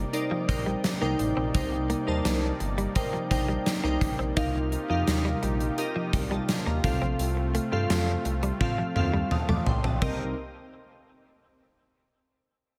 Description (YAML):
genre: 1980s-style pop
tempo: 85 BPM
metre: 4/4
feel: straight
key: C dorian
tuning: A4 = 440 Hz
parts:
  - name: glassy digital keys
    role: accompaniment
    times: 0.0-10.3 s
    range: C2 to Eb6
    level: -33 LUFS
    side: equal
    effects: chorus
  - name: brassy analog pad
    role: sustained chords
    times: 0.0-10.3 s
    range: C3 to D5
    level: -37 LUFS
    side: equal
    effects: chorus
  - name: smooth synth bass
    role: bass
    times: 0.0-10.3 s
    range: G1 to G2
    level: -32 LUFS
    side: equal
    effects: none
  - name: gated 80s drum kit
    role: drums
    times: 0.1-10.2 s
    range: crash cymbal, hi-hat, kick drum, snare drum, tambourine, toms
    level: -31 LUFS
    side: equal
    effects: gated reverb
  - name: direct-recorded clean electric guitar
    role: riff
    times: 0.3-10.2 s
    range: F3 to Eb4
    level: -37 LUFS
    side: equal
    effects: subtle chorus, delay
room: light reverb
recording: none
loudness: -27 LUFS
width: mono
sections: 0.0-10.0 A section; 10.0-12.8 B section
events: drum fill 8.6-10.0; synth keys fill 9.0-10.0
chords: 0.0 Cm7; 4.4 Ebadd9; 6.8 F; 10.0 Cm7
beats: 0.14 0.84 | 1.55 2.25 2.96 3.67 | 4.37 5.08 5.78 6.49 | 7.20 7.90 8.61 9.31 | 10.02